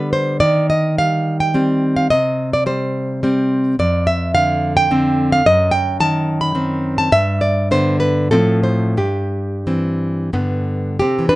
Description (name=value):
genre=romantic piece for solo classical guitar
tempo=87-112 BPM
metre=3/4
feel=rubato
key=C minor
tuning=A4 = 443 Hz
part: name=nylon-string guitar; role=solo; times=0.0-11.4 s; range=F2 to B5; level=-14 LUFS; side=equal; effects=none
room=light reverb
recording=nothing above 10.9 kHz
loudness=-14 LUFS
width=side -18 dB against mid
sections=0.0-11.0 A section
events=none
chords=0.4 Cm/Eb; 2.1 C5; 3.8 Dm7/F; 5.4 F#dim7; 7.1 G; 8.3 F/A; 9.0 C/G; 10.4 G